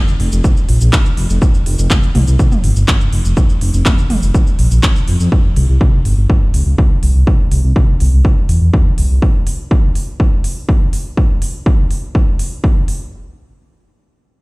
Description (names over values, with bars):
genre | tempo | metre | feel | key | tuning
melodic techno | 123 BPM | 4/4 | straight | unclear | A4 = 440 Hz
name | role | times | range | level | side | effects
techno drum kit | drums | 0.1-13.0 s | handclaps, hi-hat, shaker, toms | -22 LUFS | equal | none
dark detuned saw bass | bass | 0.2-9.2 s | F1 to F2 | -11 LUFS | equal | sidechain pumping
electronic kick drum | drums | 0.4-12.7 s | none | -12 LUFS | equal | none
room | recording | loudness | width
little or no reverb | played on a big sound system in a bare room, large studio reverb | -11 LUFS | side -25 dB against mid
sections
0.0-13.1 A section; 13.1-14.4 B section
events
none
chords
none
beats
0.44 0.93 | 1.42 1.91 2.39 2.88 | 3.37 3.86 4.34 4.83 | 5.32 5.81 6.30 6.78 | 7.27 7.76 8.25 8.73 | 9.22 9.71 10.20 10.69 | 11.17 11.66 12.15 12.64